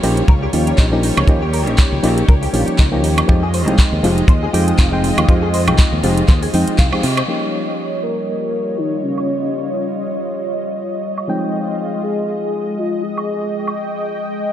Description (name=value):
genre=nu-disco, nu disco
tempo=120 BPM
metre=4/4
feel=swing 56% on 16ths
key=unclear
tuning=A4 = 440 Hz
part: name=reed electric piano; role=accompaniment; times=0.0-14.5 s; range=F3 to G5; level=-21 LUFS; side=equal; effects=sidechain pumping, ping-pong delay
part: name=lush unison pad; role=sustained chords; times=0.0-14.5 s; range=G3 to G5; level=-23 LUFS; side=equal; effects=chorus, sidechain pumping
part: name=direct-recorded clean electric guitar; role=riff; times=0.0-7.2 s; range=Eb4 to F5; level=-26 LUFS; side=left 3 dB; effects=ensemble chorus, ping-pong delay
part: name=fingered electric bass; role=bass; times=0.0-7.2 s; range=F1 to C3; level=-18 LUFS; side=equal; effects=none
part: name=house drum kit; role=drums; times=0.0-13.8 s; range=handclaps, hi-hat, woodblock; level=-24 LUFS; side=right 2 dB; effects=low-pass filter on hats, studio reverb, low-pass filter on snare, low-pass filter on perc
part: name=kick drum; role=drums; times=0.3-6.9 s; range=none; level=-13 LUFS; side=equal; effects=studio reverb
part: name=soft octave-layered synth lead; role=melody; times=8.0-14.0 s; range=Db4 to Bb4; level=-23 LUFS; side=left 2 dB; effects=chorus, tremolo, ping-pong delay
room=light reverb, digital ambience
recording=none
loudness=-14 LUFS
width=side -11 dB against mid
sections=0.0-7.3 A section; 7.3-14.5 B section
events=band accent 6.8; filter sweep on analog synth pad 7.3-14.5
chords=0.0 Eb9; 3.3 Fm7; 7.3 Eb9; 11.3 Fm7